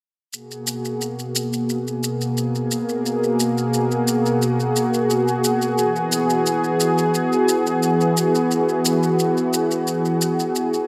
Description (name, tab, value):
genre	sunset chillout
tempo	88 BPM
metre	4/4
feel	straight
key	G# minor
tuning	A4 = 445 Hz
part	lush unison pad	sustained chords	0.3-10.9 s	B2 to G#4	-21 LUFS	equal	chorus
part	shaker	drums	0.3-10.9 s	none	-28 LUFS	equal	none
room	moderate lush hall reverb, RT60 2.8 s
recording	none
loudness	-20 LUFS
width	mono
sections	0.3-10.9 A section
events	none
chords	0.3 G#m9; 5.8 F#9sus4